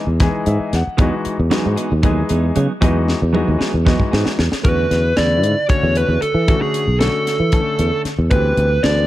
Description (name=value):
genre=electric jazz fusion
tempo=229 BPM (eighths)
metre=7/8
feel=straight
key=E major, E mixolydian from 4.6 s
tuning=A4 = 440 Hz
part: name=clear concert grand piano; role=accompaniment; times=0.0-9.1 s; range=C#3 to F#5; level=-22 LUFS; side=left 2 dB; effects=none
part: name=sustaining fretless electric bass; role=bass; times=0.1-9.1 s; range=B1 to E3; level=-17 LUFS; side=equal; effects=none
part: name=tight funk drum kit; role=drums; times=0.2-9.0 s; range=hi-hat, kick drum, snare drum, toms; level=-19 LUFS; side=equal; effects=none
part: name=clean electric guitar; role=stabs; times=1.0-4.3 s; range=F#3 to G#4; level=-24 LUFS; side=right 6 dB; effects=lush chorus
part: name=dark smooth lead guitar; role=melody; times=4.6-9.1 s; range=G#4 to D5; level=-18 LUFS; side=right 1 dB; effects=overdrive
room=light reverb, small room ambience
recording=dark, warm production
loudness=-14 LUFS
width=side -15 dB against mid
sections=0.0-4.6 A section; 4.6-9.1 B section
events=grand piano fill 0.2-1.0; drum fill 3.1-4.6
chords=0.0 Emaj9; 4.6 E13sus4; 8.3 D13sus4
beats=0.20 0.46 0.72 | 0.98 1.24 1.50 1.76 2.03 2.29 2.55 | 2.81 3.07 3.33 3.59 3.86 4.12 4.38 | 4.64 4.90 5.16 5.43 5.69 5.95 6.21 | 6.47 6.74 7.00 7.26 7.52 7.78 8.04 | 8.31 8.57 8.83